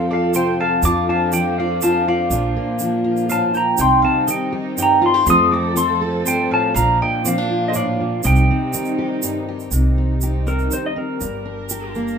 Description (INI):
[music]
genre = acoustic folk duo or small band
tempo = 122 BPM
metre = 3/4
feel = straight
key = C dorian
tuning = A4 = 440 Hz
[part]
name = pedal steel guitar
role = melody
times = 0.0-11.9 s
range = Bb4 to Eb6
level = -20 LUFS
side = left 1 dB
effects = none
[part]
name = mandolin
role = second line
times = 0.0-9.4 s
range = C5 to C6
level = -24 LUFS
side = right 6 dB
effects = none
[part]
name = fingerpicked steel-string acoustic guitar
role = accompaniment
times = 0.0-12.2 s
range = F2 to A4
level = -21 LUFS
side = left 2 dB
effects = none
[part]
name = dark studio string section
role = sustained chords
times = 0.0-12.2 s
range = C3 to Bb4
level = -27 LUFS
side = right 3 dB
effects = none
[part]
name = egg shaker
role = percussion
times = 0.3-12.1 s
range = none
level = -25 LUFS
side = right 7 dB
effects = none
[part]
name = upright bass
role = bass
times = 0.8-12.2 s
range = G1 to F2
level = -20 LUFS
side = right 1 dB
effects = none
[sound]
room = moderate small room ambience, RT60 0.5 s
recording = minimal, uncompressed stereo recording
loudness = -16 LUFS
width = side -6 dB against mid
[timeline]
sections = 0.0-9.7 A section; 9.7-12.2 B section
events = pedal steel guitar solo 9.7-12.2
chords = 0.0 F; 0.8 Dm/F; 2.3 Bb; 3.8 Cm; 5.3 F; 6.8 Bb; 8.2 Cm; 11.2 Gm